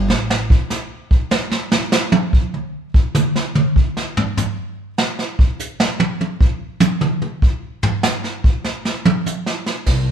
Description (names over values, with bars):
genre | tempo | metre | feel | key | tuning
jazz piano trio | 98 BPM | 4/4 | swing 66% on 8ths | unclear | A4 = 440 Hz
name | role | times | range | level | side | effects
upright bass | bass | 0.0-0.5, 9.9-10.1 s | A1 to C2 | -19 LUFS | equal | none
jazz brush drum kit | drums | 0.1-10.1 s | brushed snare drum, crash cymbal, hi-hat, kick drum, snare drum, toms | -16 LUFS | right 1 dB | none
room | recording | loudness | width
light reverb | band playing live in one room | -16 LUFS | side -8 dB against mid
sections
0.0-9.9 A section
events
drum solo 0.1-9.9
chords
none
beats
| 0.10 0.71 1.32 1.93 | 2.54 3.15 3.76 4.37 | 4.98 5.59 6.20 6.81 | 7.42 8.04 8.65 9.26 | 9.87